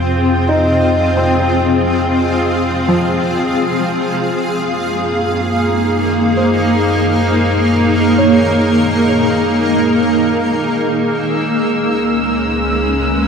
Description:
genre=ambient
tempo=66 BPM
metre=4/4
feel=straight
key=unclear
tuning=A4 = 439 Hz
part: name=granular cloud pad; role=sustained chords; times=0.0-13.3 s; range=Ab3 to F5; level=-14 LUFS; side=equal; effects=built-in reverb
part: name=deep rumbling drone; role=bass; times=0.0-13.3 s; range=Db2 to Gb2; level=-21 LUFS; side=equal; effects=built-in reverb
part: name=analog drone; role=drone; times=4.8-13.3 s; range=Ab3 to Ab4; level=-26 LUFS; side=equal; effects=none
part: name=felt-muted upright piano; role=arpeggios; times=0.5-11.2 s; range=F3 to Db5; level=-20 LUFS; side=equal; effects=ping-pong delay
part: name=muted studio violin section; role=texture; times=11.2-13.3 s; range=Fb6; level=-21 LUFS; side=right 1 dB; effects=none
room=wet huge ambient reverb, RT60 7.6 s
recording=none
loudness=-12 LUFS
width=side -6 dB against mid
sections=0.0-13.3 A section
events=fade-out on felt piano 0.0-13.3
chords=0.0 Fm; 3.9 Gb; 11.2 Dbm7

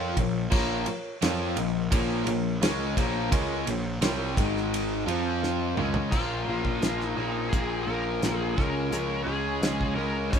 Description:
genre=classic rock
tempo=86 BPM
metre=4/4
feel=straight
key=Bb minor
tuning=A4 = 440 Hz
part: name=bright reed electric piano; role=accompaniment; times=0.0-6.1 s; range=Eb4 to Bb5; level=-36 LUFS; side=right 3 dB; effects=fast tremolo
part: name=cranked stack guitar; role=riff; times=0.0-10.4 s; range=Ab2 to F4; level=-32 LUFS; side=right 3 dB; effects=overdrive
part: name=raw garage guitar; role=riff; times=0.0-10.4 s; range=Ab2 to F4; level=-31 LUFS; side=left 6 dB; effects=overdrive
part: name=fuzz picked electric bass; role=bass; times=0.0-10.4 s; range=Ab1 to F2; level=-31 LUFS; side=equal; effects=overdrive
part: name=damped 70s drum kit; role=drums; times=0.2-10.4 s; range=crash cymbal, hi-hat, kick drum, ride cymbal, snare drum, toms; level=-29 LUFS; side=equal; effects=none
part: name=nasal lead guitar with a parked wah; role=melody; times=6.1-10.4 s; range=F4 to Db5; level=-33 LUFS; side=left 1 dB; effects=overdrive
part: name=picked plugged-in twelve-string acoustic guitar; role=accompaniment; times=6.1-10.4 s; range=Bb2 to F4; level=-38 LUFS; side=right 1 dB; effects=none
room=moderate studio ambience, RT60 0.5 s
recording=band playing live in one room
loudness=-25 LUFS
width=side -7 dB against mid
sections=0.0-6.1 A section; 6.1-10.4 B section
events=reed electric piano fill 4.7-6.1; drum fill 5.4-6.1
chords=0.0 Bbm; 4.4 Ab5; 5.1 F5; 5.8 Bbm; 8.6 Db

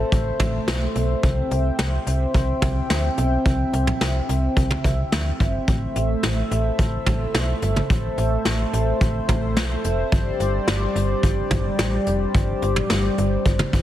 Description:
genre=synth-pop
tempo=108 BPM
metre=4/4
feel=straight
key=C major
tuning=A4 = 441 Hz
part: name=chorused pulse-width pad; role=sustained chords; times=0.0-13.8 s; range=G3 to G5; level=-24 LUFS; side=equal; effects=none
part: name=slap-like FM bass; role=bass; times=0.0-13.8 s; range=F1 to D2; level=-23 LUFS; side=equal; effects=none
part: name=vintage brush drum kit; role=drums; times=0.1-13.8 s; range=hi-hat, kick drum, snare drum, toms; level=-23 LUFS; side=equal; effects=none
room=light reverb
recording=heavily compressed radio sound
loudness=-19 LUFS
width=side -12 dB against mid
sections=0.0-13.8 A section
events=none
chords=0.0 Am; 1.2 C; 5.7 Am; 10.1 Gsus4

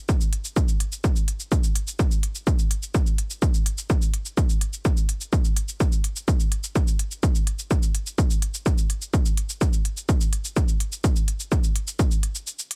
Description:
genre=techno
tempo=126 BPM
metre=4/4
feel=straight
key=none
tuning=none
part: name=electronic kick drum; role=drums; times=0.1-12.1 s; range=none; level=-24 LUFS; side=equal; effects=none
part: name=electronic shaker and hi-hat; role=drums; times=0.1-12.8 s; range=none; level=-33 LUFS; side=equal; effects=none
room=little or no reverb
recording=none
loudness=-24 LUFS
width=mono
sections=0.0-12.8 A section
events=break 12.5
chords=none

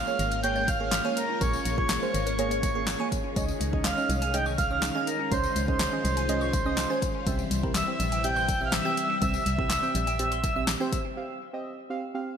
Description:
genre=dance-pop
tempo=123 BPM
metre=4/4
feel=straight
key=F minor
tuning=A4 = 440 Hz
part: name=mellow accordion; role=melody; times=0.0-10.6 s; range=Bb4 to G5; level=-29 LUFS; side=right 1 dB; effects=ping-pong delay
part: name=string machine, full ensemble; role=sustained chords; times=0.0-11.1 s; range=C3 to F4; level=-35 LUFS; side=left 3 dB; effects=phaser, ensemble chorus, sidechain pumping
part: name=glassy wavetable pluck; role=arpeggios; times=0.0-11.2 s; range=G3 to Ab6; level=-39 LUFS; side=left 2 dB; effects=chorus, sidechain pumping, ping-pong delay
part: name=organ-like FM bass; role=bass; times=0.0-10.8 s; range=Ab1 to Db2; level=-31 LUFS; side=equal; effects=sidechain pumping
part: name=deep mellow chord stab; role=accompaniment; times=0.1-12.3 s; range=Bb3 to G5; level=-33 LUFS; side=right 4 dB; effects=chorus
part: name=tambourine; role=percussion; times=0.1-11.0 s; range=none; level=-42 LUFS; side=left 10 dB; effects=none
part: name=deep house drum kit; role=drums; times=0.2-11.0 s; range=handclaps, hi-hat, kick drum, snare drum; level=-30 LUFS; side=equal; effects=none
room=moderate lush hall reverb, RT60 2.2 s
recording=bright 1980s-style digital production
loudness=-24 LUFS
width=side -8 dB against mid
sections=0.0-11.2 A section; 11.2-12.4 B section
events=none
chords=0.0 Bbm7; 3.4 Dbsus2; 7.3 C; 11.2 Fsus2

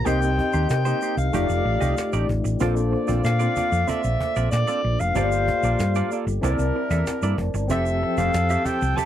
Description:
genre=polished 1980s jazz-funk pop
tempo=94 BPM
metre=4/4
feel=straight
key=unclear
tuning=A4 = 440 Hz
part: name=breathy soprano saxophone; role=melody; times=0.0-9.1 s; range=D5 to A5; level=-25 LUFS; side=equal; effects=slapback echo
part: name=overdriven tine electric piano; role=accompaniment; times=0.0-9.1 s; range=F3 to A5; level=-26 LUFS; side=left 3 dB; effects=fast tremolo, lush chorus
part: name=mellow horn section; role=second line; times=0.1-9.1 s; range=E3 to D5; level=-33 LUFS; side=left 2 dB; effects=none
part: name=semi-hollow electric guitar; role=riff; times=0.1-9.1 s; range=A3 to E5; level=-29 LUFS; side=right 7 dB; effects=analog chorus
part: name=hollow-body short-scale fingered electric bass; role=bass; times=0.1-8.9 s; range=F1 to C3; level=-23 LUFS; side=equal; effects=none
part: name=cajon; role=drums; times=0.1-9.1 s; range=none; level=-32 LUFS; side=equal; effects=none
part: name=tube shaker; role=percussion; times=0.1-9.1 s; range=none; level=-42 LUFS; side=right 15 dB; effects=none
room=little or no reverb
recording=dry, close 1970s-style studio recording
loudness=-20 LUFS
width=side -11 dB against mid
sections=0.0-9.1 A section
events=none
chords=0.1 Cm7; 1.3 F13; 2.6 Bbmaj9; 5.2 Gm9; 6.4 C13; 7.7 Fmaj9

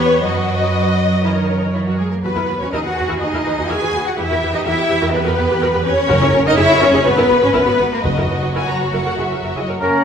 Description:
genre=classical, dramatic, fast romantic movement for symphony orchestra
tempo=122 BPM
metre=4/4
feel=straight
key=B major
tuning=A4 = 440 Hz
part: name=warm symphonic violin section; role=melody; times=0.0-10.0 s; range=F#4 to A#5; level=-23 LUFS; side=left 5 dB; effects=none
part: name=warm symphonic violin section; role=second line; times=0.0-10.0 s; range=C#4 to G#5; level=-20 LUFS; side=left 2 dB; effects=none
part: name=rich symphonic viola section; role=accompaniment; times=0.0-9.9 s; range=E4 to D#5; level=-22 LUFS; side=right 1 dB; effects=none
part: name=rich symphonic double bass section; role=bass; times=0.0-9.9 s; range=F#1 to F#2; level=-22 LUFS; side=right 2 dB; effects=none
part: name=warm symphonic cello section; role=bass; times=0.0-10.0 s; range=C#3 to G#4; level=-20 LUFS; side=right 2 dB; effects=none
part: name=timpani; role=percussion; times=6.1-8.8 s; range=F#2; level=-23 LUFS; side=equal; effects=none
part: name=concert flute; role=second line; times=9.8-10.0 s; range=A#5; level=-20 LUFS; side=left 1 dB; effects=none
part: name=warm oboe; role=second line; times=9.8-10.0 s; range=A#4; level=-19 LUFS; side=equal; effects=none
part: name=mellow French horn section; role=sustained chords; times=9.8-10.0 s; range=A#3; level=-21 LUFS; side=left 4 dB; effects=none
part: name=warm trumpet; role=stabs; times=9.8-10.0 s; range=C#4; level=-18 LUFS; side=right 1 dB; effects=none
room=wet recital hall reverb, RT60 1.4 s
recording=recorded in a church or concert hall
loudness=-14 LUFS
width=side -7 dB against mid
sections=0.0-10.0 A section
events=none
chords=0.2 B/F#; 1.2 F#; 2.2 B/D#; 4.2 Em; 6.1 F#; 7.1 G#m7; 8.1 B/F#; 9.1 F#

